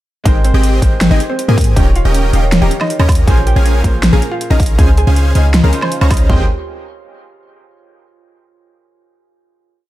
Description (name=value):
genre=future bass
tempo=159 BPM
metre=4/4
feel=half-time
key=Ab major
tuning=A4 = 439 Hz
part: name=clear concert grand piano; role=accompaniment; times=0.2-6.5 s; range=Bb2 to G5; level=-24 LUFS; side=right 1 dB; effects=sidechain pumping, dub echo
part: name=mallet-like synth pluck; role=melody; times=0.3-6.4 s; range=Bb3 to Db6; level=-22 LUFS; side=equal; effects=lush chorus, sidechain pumping, digital delay
part: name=concert harp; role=arpeggios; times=0.3-6.7 s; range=F4 to C6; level=-28 LUFS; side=right 5 dB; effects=sidechain pumping, dub echo
part: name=dense compressed supersaw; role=riff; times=0.3-6.4 s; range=C4 to Bb5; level=-20 LUFS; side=equal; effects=sidechain pumping
part: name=warm 808-style bass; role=bass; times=0.3-6.5 s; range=Eb1 to Ab2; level=-12 LUFS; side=equal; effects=sidechain pumping
part: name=big-room dance drum kit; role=drums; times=0.3-6.4 s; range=kick drum, toms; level=-12 LUFS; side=equal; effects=overdrive, studio ambience
part: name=big-room dance drum kit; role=drums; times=0.3-6.2 s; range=hi-hat, snare drum, woodblock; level=-17 LUFS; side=equal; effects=overdrive, studio ambience
room=digital ambience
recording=none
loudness=-10 LUFS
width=side -15 dB against mid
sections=0.3-6.3 drop; 6.3-7.8 final chord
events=drop 0.3-6.3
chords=0.3 Abmaj7; 1.8 Eb7; 3.3 Bbm7; 4.8 Dbmaj7; 6.3 Abmaj7